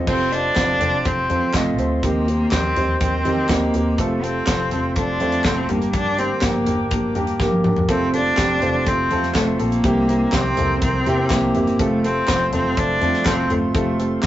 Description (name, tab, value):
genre	piano-driven pop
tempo	123 BPM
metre	4/4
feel	straight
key	unclear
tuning	A4 = 440 Hz
part	warm grand piano	accompaniment	0.0-14.3 s	G2 to Eb5	-22 LUFS	right 1 dB	none
part	rich cello	melody	0.1-14.2 s	A3 to D4	-21 LUFS	equal	none
part	warm woodwind section	sustained chords	0.1-14.3 s	G4 to D6	-34 LUFS	left 1 dB	none
part	vintage muted fingered electric bass	bass	0.1-14.3 s	F1 to Eb3	-27 LUFS	equal	none
part	modern studio drum kit	drums	0.1-14.3 s	crash cymbal, handclaps, hi-hat, kick drum, snare drum, toms	-23 LUFS	left 1 dB	none
room	moderate small room reverb, RT60 0.5 s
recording	rough rehearsal-room recording, nothing above 7.8 kHz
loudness	-17 LUFS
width	side -13 dB against mid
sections	0.1-14.3 A section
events	drum fill 7.4-7.9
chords	0.1 F; 2.0 Cm7/Eb; 4.0 F; 5.7 Gm; 7.9 F; 9.8 C7; 11.8 F